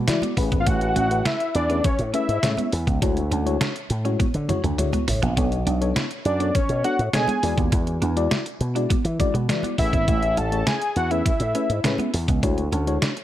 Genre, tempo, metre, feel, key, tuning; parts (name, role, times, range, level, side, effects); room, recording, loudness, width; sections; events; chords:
early-eighties boogie funk; 102 BPM; 4/4; straight; A4 = 440 Hz
clean electric guitar; riff; 0.0-13.2 s; G#3 to E4; -31 LUFS; right 7 dB; analog chorus
slap bass with an envelope filter; bass; 0.0-13.0 s; G#1 to E3; -24 LUFS; equal
mellow FM electric piano; accompaniment; 0.1-13.1 s; G#3 to D5; -28 LUFS; left 5 dB; chorus
detuned 8-bit digital drum machine; drums; 0.1-13.2 s; hi-hat, kick drum, snare drum, toms; -24 LUFS; equal
congas; percussion; 0.1-13.2 s; -32 LUFS; right 1 dB
fat analog lead; melody; 0.6-2.7, 6.3-12.1 s; C#5 to A5; -24 LUFS; left 1 dB; chorus
digital ambience; -20 LUFS; side -13 dB against mid
0.0-13.2 A section
drum fill 4.2-5.4
0.4 Amaj9; 3.0 Dmaj9#11; 5.4 Bm9; 7.4 E9; 9.8 Amaj9; 12.4 Dmaj9#11